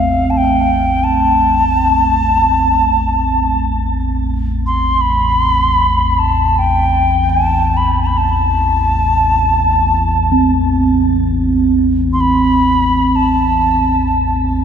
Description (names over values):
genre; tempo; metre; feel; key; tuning
world meditative, free-time meditation music; free time; none; none; A minor; A4 = 439 Hz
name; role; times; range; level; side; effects
bright reedy alto ocarina; melody; 0.0-14.4 s; F5 to C6; -14 LUFS; equal; shimmer reverb, ping-pong delay
deep rumbling drone; drone; 0.0-14.6 s; A1 to E2; -17 LUFS; left 1 dB; built-in reverb, lush chorus
quartz singing bowl; texture; 0.0-14.6 s; A3 to C4; -18 LUFS; right 3 dB; none
room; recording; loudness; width
wet lush hall reverb, RT60 3.0 s; dreamy mix soaked in reverb; -11 LUFS; side -8 dB against mid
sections
0.0-14.6 A section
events
none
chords
none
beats
free time